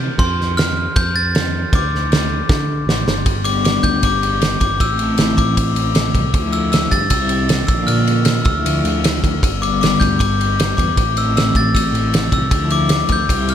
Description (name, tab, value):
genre	indie rock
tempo	156 BPM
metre	4/4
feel	straight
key	D minor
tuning	A4 = 441 Hz
part	clean electric guitar	riff	0.0-13.5 s	G2 to C5	-21 LUFS	left 1 dB	phaser
part	picked electric bass	bass	0.0-13.5 s	G1 to D3	-22 LUFS	equal	none
part	glockenspiel with hard plastic mallets	melody	0.2-13.5 s	C6 to A6	-20 LUFS	left 2 dB	none
part	loose indie drum kit	drums	0.2-13.5 s	crash cymbal, kick drum, ride cymbal, snare drum	-18 LUFS	right 1 dB	gated reverb
room	light reverb, small room reverb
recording	bright 1980s-style digital production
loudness	-14 LUFS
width	side -9 dB against mid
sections	0.0-3.3 A section; 3.3-13.5 B section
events	drum fill 2.5-3.3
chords	0.2 F6; 1.7 Dm; 3.3 G; 4.8 Am; 6.3 Dmadd9; 7.1 C; 7.7 Bb; 8.5 Dmadd9; 9.4 G; 11.0 Am; 12.5 Dmadd9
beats	| 0.19 0.57 0.96 1.34 | 1.72 2.11 2.49 2.88 | 3.26 3.65 4.03 4.42 | 4.80 5.19 5.57 5.96 | 6.34 6.73 7.12 7.50 | 7.89 8.28 8.66 9.05 | 9.43 9.82 10.21 10.59 | 10.98 11.36 11.75 12.13 | 12.52 12.91 13.29